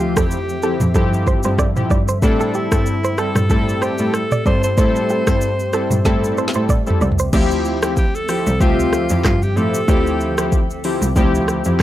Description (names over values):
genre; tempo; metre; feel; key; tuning
afrobeats; 94 BPM; 4/4; swing 55% on 16ths; D minor; A4 = 438 Hz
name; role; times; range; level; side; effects
breathy alto saxophone; melody; 0.0-10.5 s; D4 to C5; -24 LUFS; equal; tape echo
warm analog keys; accompaniment; 0.0-11.8 s; F3 to E5; -21 LUFS; left 2 dB; chorus
granular cloud pad; sustained chords; 0.0-11.8 s; D3 to E5; -29 LUFS; left 1 dB; built-in reverb
direct-recorded clean electric guitar; riff; 0.0-7.3 s; G4 to D5; -24 LUFS; right 4 dB; tape echo
rich cello; bass; 0.0-11.8 s; C2 to A2; -20 LUFS; equal; none
afro-pop drum kit; drums; 0.2-11.8 s; crash cymbal, handclaps, hi-hat, kick drum, rim click, shaker, snare drum, toms; -18 LUFS; equal; none
room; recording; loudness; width
digital ambience; dry, gritty hardware recording; -15 LUFS; side -13 dB against mid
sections
0.0-7.3 A section; 7.3-11.8 B section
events
drum fill 6.1-7.3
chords
0.0 Dm11; 2.2 Am7; 7.3 Dm11